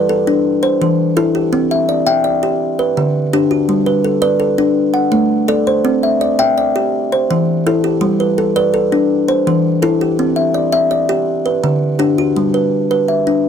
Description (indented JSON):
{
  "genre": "southern african traditional, mbira-style interlocking cycle",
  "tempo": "111 BPM (dotted quarters)",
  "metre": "12/8",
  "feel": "straight",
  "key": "G major",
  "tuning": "A4 = 440 Hz",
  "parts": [
    { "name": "kalimba", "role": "solo", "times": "0.0-13.5 s", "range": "D3 to G5", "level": "-12 LUFS", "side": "equal", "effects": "none" }
  ],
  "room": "light reverb",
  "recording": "close, detailed microphones",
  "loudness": "-12 LUFS",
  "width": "side -8 dB against mid",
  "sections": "0.0-12.4 A section; 12.4-13.5 B section",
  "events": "none",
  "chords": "0.4 Em; 1.5 C; 2.6 D; 3.7 G; 4.8 Am; 5.9 C; 6.9 Em; 8.0 G; 9.1 Em; 10.2 C; 11.3 D; 12.4 G"
}